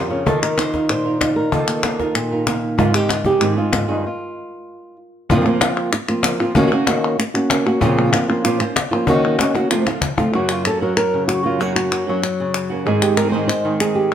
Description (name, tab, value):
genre	flamenco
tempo	191 BPM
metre	4/4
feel	straight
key	unclear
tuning	A4 = 441 Hz
part	flamenco guitar	melody	0.0-14.1 s	F2 to C5	-18 LUFS	equal	plate reverb
part	flamenco guitar	stabs	0.1-14.1 s	F2 to C5	-23 LUFS	right 4 dB	none
part	cajon	percussion	0.3-10.3 s	none	-23 LUFS	left 4 dB	none
part	palmas hand claps	percussion	0.3-14.1 s	none	-23 LUFS	left 4 dB	none
room	moderate large studio reverb, RT60 1.1 s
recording	none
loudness	-16 LUFS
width	side -9 dB against mid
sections	0.0-5.3 A section; 5.3-10.3 B section; 10.3-14.1 C section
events	stop 4.0-5.3; drum fill 9.5-10.3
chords	0.3 Ebsus2; 2.8 Ab; 4.0 N.C.; 5.3 Fsus4; 6.6 Ebm7; 7.8 Bbmadd9; 9.1 Ebm7; 9.7 F; 10.3 Gb; 12.9 Ab